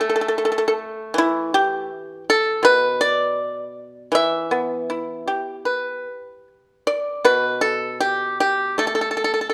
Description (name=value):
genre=chinese traditional, Chinese solo plucked strings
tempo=72-83 BPM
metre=4/4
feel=rubato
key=E yu mode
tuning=A4 = 441 Hz
part: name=pipa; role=solo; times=0.0-9.5 s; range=B2 to E5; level=-21 LUFS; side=equal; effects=none
room=moderate recital hall reverb, RT60 1.3 s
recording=dark, warm production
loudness=-21 LUFS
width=mono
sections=0.0-7.3 A section; 7.3-9.5 B section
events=none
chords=none